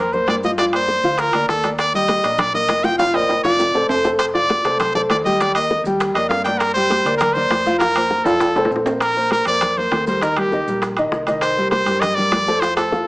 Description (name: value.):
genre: latin, salsa.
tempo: 199 BPM.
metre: 4/4.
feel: straight.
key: unclear.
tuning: A4 = 438 Hz.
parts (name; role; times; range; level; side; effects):
brilliant trumpet; melody; 0.0-13.1 s; G4 to G5; -18 LUFS; equal; none.
dark grand piano; accompaniment; 0.0-13.1 s; Eb3 to G5; -20 LUFS; equal; none.
hollow-body short-scale fingered electric bass; bass; 0.0-13.0 s; Eb1 to G2; -32 LUFS; equal; none.
congas; percussion; 0.1-13.1 s; none; -30 LUFS; equal; none.
maracas; percussion; 0.1-13.1 s; none; -44 LUFS; right 3 dB; none.
bongos; percussion; 0.3-13.1 s; none; -26 LUFS; left 2 dB; none.
timbales; percussion; 0.3-12.9 s; none; -25 LUFS; right 2 dB; none.
room: moderate large studio reverb, RT60 0.9 s.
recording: small speaker sound.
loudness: -15 LUFS.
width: side -22 dB against mid.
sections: 0.0-9.0 A section; 9.0-13.1 B section.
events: drum fill 3.0-4.2, 8.3-9.0.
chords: 0.0 Fsus4; 0.6 Gm7; 1.8 Ebmaj7; 3.0 F7sus4; 3.6 F7; 5.4 Ebmaj7; 6.6 Gm7; 7.8 Fsus4; 8.4 F; 9.0 Bbsus2; 10.2 Eb; 11.4 Cm7.